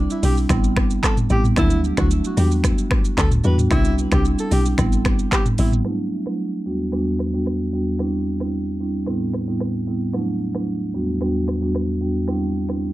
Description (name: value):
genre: afrobeats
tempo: 112 BPM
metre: 4/4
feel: straight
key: E minor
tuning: A4 = 439 Hz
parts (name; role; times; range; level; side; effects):
- woody log drum bass; bass; 0.0-5.8 s; A1 to E2; -19 LUFS; equal; none
- warm alto saxophone; melody; 0.1-5.7 s; E4 to B4; -28 LUFS; equal; plate reverb, tape echo
- afro-pop drum kit; drums; 0.1-12.8 s; finger snaps, handclaps, hi-hat, kick drum, rim click, shaker, toms; -21 LUFS; equal; none
- marimba with medium mallets; accompaniment; 0.2-12.9 s; E2 to F#4; -21 LUFS; right 1 dB; plate reverb
room: moderate studio ambience, RT60 0.5 s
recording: dark, warm production, low-pass filter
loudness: -18 LUFS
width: side -16 dB against mid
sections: 0.0-5.9 A section; 5.9-12.9 B section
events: filter sweep 5.9-12.9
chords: 0.0 Cadd9; 0.5 Am7; 1.6 Dadd9; 2.4 Em7; 3.7 Cadd9; 4.8 Am7; 5.9 Dadd9; 6.7 Em7; 8.0 Cadd9; 9.1 Am7; 10.1 Dadd9; 10.9 Em7; 12.3 Cadd9